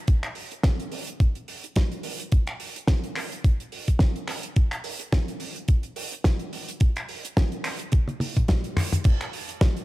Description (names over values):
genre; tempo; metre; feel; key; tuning
nu-disco; 107 BPM; 4/4; swing 56% on 16ths; none; none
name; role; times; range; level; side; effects
damped 70s drum kit; drums; 0.1-9.8 s; crash cymbal, finger snaps, hi-hat, snare drum, toms; -29 LUFS; equal; studio reverb
electronic kick drum; drums; 0.1-9.7 s; none; -20 LUFS; equal; overdrive, studio reverb
room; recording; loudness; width
light reverb; none; -23 LUFS; side -18 dB against mid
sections
0.0-9.1 A section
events
drum fill 7.9-9.1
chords
none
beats
| 0.08 0.64 1.20 1.76 | 2.32 2.88 3.44 4.00 | 4.57 5.13 5.69 6.25 | 6.81 7.37 7.93 8.49 | 9.05 9.61